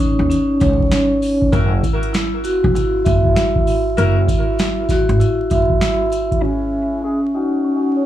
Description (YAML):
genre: hip hop, boom-bap hip-hop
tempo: 98 BPM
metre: 4/4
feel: swing 63% on 16ths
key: C# dorian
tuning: A4 = 444 Hz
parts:
  - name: vibraphone with soft mallets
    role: accompaniment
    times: 0.0-8.1 s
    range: C#4 to E5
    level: -17 LUFS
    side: equal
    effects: cassette tape, high-pass filter, low-pass filter
  - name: booming analog drum machine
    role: drums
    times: 0.0-6.4 s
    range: hi-hat, kick drum, snare drum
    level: -19 LUFS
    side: equal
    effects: none
  - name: upright bass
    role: bass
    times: 0.2-5.8 s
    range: F#1 to D#2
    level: -17 LUFS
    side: equal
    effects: none
  - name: sleigh bells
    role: percussion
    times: 0.3-6.3 s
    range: none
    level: -40 LUFS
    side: left 8 dB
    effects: none
  - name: clear saxophone section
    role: stabs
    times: 1.5-7.9 s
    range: G#3 to A#4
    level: -25 LUFS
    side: left 4 dB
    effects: high-pass filter, low-pass filter, digital delay
room: light reverb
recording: vinyl crackle, studio reverb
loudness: -14 LUFS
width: side -12 dB against mid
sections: 0.0-6.4 A section; 6.4-8.1 B section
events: filter sweep 6.4-8.1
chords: 0.0 C#sus2; 1.5 F#7(no3); 6.4 C#madd9